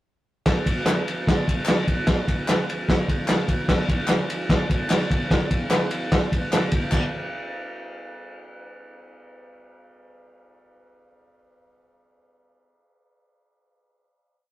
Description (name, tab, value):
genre	rock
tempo	149 BPM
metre	4/4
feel	straight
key	none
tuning	none
part	vintage drum kit	drums	0.5-7.0 s	crash cymbal, kick drum, ride cymbal, snare drum	-21 LUFS	equal	none
part	group handclap	percussion	0.9-7.1 s	none	-32 LUFS	left 2 dB	none
room	light reverb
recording	rough rehearsal-room recording, tube saturation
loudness	-20 LUFS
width	side -15 dB against mid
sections	0.5-6.9 riff; 6.9-8.5 final hit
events	none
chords	none